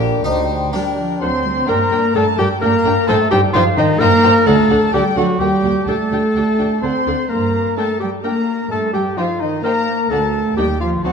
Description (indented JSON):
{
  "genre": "cinematic, playful, whimsical film cue",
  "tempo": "128 BPM",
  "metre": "3/4",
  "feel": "straight",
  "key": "G minor",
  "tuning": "A4 = 435 Hz",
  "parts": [
    { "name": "harpsichord", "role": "melody", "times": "0.0-1.2 s", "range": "Bb3 to Eb4", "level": "-23 LUFS", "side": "left 2 dB", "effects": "none" },
    { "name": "clear clarinet", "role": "second line", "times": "0.0-11.1 s", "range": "D4 to C5", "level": "-19 LUFS", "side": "left 1 dB", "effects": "none" },
    { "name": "dark studio violin section", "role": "second line", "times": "0.0-11.1 s", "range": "G4 to C6", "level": "-25 LUFS", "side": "left 3 dB", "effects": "none" },
    { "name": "large flute ensemble", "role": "second line", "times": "0.0-11.1 s", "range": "Eb5 to C6", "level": "-23 LUFS", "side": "left 1 dB", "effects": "none" },
    { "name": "clear bassoon", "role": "accompaniment", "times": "0.0-1.4 s", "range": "F#3 to G3", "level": "-28 LUFS", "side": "equal", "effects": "none" },
    { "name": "dark studio cello section", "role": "bass", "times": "0.0-11.1 s", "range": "Bb2 to C4", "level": "-22 LUFS", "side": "right 4 dB", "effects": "none" },
    { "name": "dark studio double bass section", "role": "bass", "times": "0.0-11.1 s", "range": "Bb1 to G2", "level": "-23 LUFS", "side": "right 4 dB", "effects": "none" },
    { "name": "dark studio violin section", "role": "melody", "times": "0.7-11.1 s", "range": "F#5 to A5", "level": "-31 LUFS", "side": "left 3 dB", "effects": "none" },
    { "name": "warm studio viola section", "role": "accompaniment", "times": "0.7-11.1 s", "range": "Bb3 to C5", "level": "-24 LUFS", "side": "right 1 dB", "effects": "none" },
    { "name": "mellow French horn section", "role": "sustained chords", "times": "0.7-11.1 s", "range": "Eb3 to G4", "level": "-22 LUFS", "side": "left 4 dB", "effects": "none" }
  ],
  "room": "wet scoring stage reverb, RT60 1.9 s",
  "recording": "dark, warm production",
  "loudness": "-14 LUFS",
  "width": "side -6 dB against mid",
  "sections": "0.0-1.7 A section; 1.7-11.1 B section",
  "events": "none",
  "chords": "0.3 Gm/D; 1.2 D; 1.7 Gm; 3.1 Cm/G; 4.5 D; 5.4 Eb; 5.9 Dsus4; 6.8 D; 7.3 Gm; 8.7 Cm/G (rootless); 10.1 D5; 10.6 Eb"
}